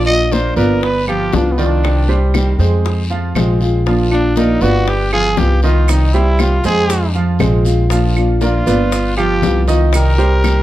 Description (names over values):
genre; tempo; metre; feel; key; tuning
latin, Cuban son and guajira; 119 BPM; 4/4; straight; C minor; A4 = 441 Hz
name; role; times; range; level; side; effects
growling trumpet; melody; 0.0-10.6 s; B3 to Eb5; -18 LUFS; equal; plate reverb
nylon-string guitar; accompaniment; 0.0-10.6 s; C3 to G4; -19 LUFS; left 2 dB; none
clear baby grand piano; arpeggios; 0.0-10.6 s; Eb3 to F5; -19 LUFS; right 4 dB; none
upright bass; bass; 0.0-10.6 s; G1 to F2; -15 LUFS; equal; none
claves; percussion; 0.1-10.6 s; none; -29 LUFS; right 4 dB; none
bongos; percussion; 0.3-10.6 s; none; -22 LUFS; left 6 dB; none
guiro; percussion; 0.3-10.6 s; none; -32 LUFS; left 4 dB; none
maracas; percussion; 5.9-10.6 s; none; -31 LUFS; right 7 dB; none
room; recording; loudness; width
light reverb; dark, warm production; -12 LUFS; side -14 dB against mid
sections
0.0-10.6 A section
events
trumpet solo 0.0-10.6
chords
0.0 Bb; 0.8 G7; 1.8 Cm; 2.8 Fm; 3.9 Bb; 4.9 G7; 5.9 Cm; 6.9 Fm; 7.9 Bb; 8.9 G7; 9.9 Cm